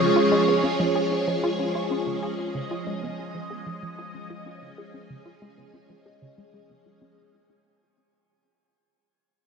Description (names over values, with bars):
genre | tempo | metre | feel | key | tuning
ambient, sequencer-driven space music | 94 BPM | 4/4 | straight | unclear | A4 = 439 Hz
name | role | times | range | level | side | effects
phased string machine | sustained chords | 0.0-7.1 s | E#3 to D#5 | -24 LUFS | right 1 dB | ensemble chorus, phaser, shimmer reverb
analog pluck | riff | 0.0-7.2 s | C#3 to G#4 | -30 LUFS | equal | chorus, tape echo, shimmer reverb
room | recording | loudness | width
wet lush hall reverb, RT60 2.5 s | dreamy mix soaked in reverb | -23 LUFS | side -6 dB against mid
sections
0.0-7.2 A section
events
fade-out 0.0-7.2; filter sweep on synth arpeggio sound 0.0-7.2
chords
0.0 C#